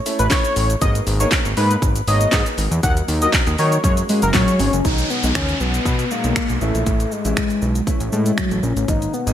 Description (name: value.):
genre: dance-pop.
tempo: 119 BPM.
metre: 4/4.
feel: straight.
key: unclear.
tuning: A4 = 440 Hz.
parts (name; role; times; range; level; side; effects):
warm baby grand piano; accompaniment; 0.1-9.3 s; B2 to C#5; -27 LUFS; right 1 dB; lush chorus, sidechain pumping.
house drum kit; drums; 0.1-9.3 s; finger snaps, handclaps, hi-hat, kick drum, shaker, snare drum; -21 LUFS; equal; none.
wide unison lead; melody; 0.2-4.7 s; A#4 to F#5; -22 LUFS; left 1 dB; ping-pong delay.
fat analog bass; bass; 0.2-9.3 s; F#1 to D#3; -20 LUFS; equal; sidechain pumping.
soft octave-layered synth lead; melody; 4.1-9.3 s; F#3 to D#4; -21 LUFS; left 2 dB; chorus.
downlifter; sound effects; 4.8-8.9 s; none; -27 LUFS; equal; none.
room: light reverb, digital ambience.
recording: bright 1980s-style digital production.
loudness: -16 LUFS.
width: side -10 dB against mid.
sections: 0.0-4.8 A section; 4.8-9.3 B section.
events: drop 0.0-4.8.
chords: 0.0 A; 0.8 G#madd9; 2.8 D#m; 3.8 F#add9; 4.8 B6; 6.6 A.